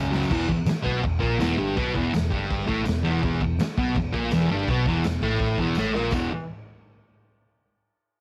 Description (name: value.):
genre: garage rock duo or trio.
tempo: 165 BPM.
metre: 4/4.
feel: straight.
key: unclear.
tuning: A4 = 440 Hz.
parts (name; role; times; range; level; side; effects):
thick fuzz guitar; riff; 0.0-6.3 s; E2 to B3; -26 LUFS; equal; distortion.
picked electric bass; bass; 0.0-6.3 s; E1 to C#2; -33 LUFS; equal; none.
raw garage drum kit; drums; 0.1-6.2 s; crash cymbal, kick drum, snare drum, splash cymbal; -32 LUFS; equal; cassette tape.
tambourine; percussion; 0.1-6.3 s; none; -50 LUFS; equal; none.
room: light reverb.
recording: home recording on cassette.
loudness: -24 LUFS.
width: mono.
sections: 0.3-6.1 A section; 6.1-7.6 B section.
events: drum fill 0.0-0.3, 5.8-6.1.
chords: 0.3 E5.